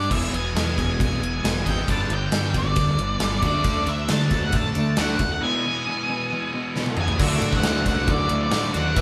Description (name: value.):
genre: classic rock.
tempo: 135 BPM.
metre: 4/4.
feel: straight.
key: unclear.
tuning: A4 = 440 Hz.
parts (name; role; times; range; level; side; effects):
octave-fuzz lead guitar; melody; 0.0-9.0 s; D5 to A5; -29 LUFS; equal; distortion.
cranked stack guitar; riff; 0.0-9.0 s; E2 to G#4; -31 LUFS; equal; overdrive.
overdriven semi-hollow guitar; riff; 0.0-9.0 s; E2 to G4; -31 LUFS; equal; spring reverb.
growling fingered electric bass; bass; 0.0-9.0 s; E1 to D3; -29 LUFS; equal; overdrive.
gated 80s drum kit; drums; 0.0-9.0 s; crash cymbal, kick drum, ride cymbal, snare drum, toms; -27 LUFS; equal; none.
tambourine; percussion; 3.7-9.0 s; none; -44 LUFS; equal; none.
warm upright piano; accompaniment; 7.2-9.0 s; E4 to E5; -38 LUFS; equal; none.
tonewheel organ; sustained chords; 7.2-9.0 s; none; barely audible; none; none.
raw garage guitar; riff; 7.2-9.0 s; E2 to D4; -32 LUFS; equal; overdrive.
room: moderate stone room reverb, RT60 1.2 s.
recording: band playing live in one room, lossy compression artefacts.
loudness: -23 LUFS.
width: mono.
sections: 0.1-7.2 A section; 7.2-9.0 B section.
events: break 5.4-7.2; drum fill 6.8-7.2.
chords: 0.1 E; 1.9 G; 3.4 D; 5.4 E; 7.2 Dadd9.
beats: | 0.10 0.55 0.99 1.44 | 1.88 2.33 2.77 3.21 | 3.66 4.10 4.54 4.99 | 5.43 5.87 6.32 6.76 | 7.20 7.64 8.09 8.53 | 8.97.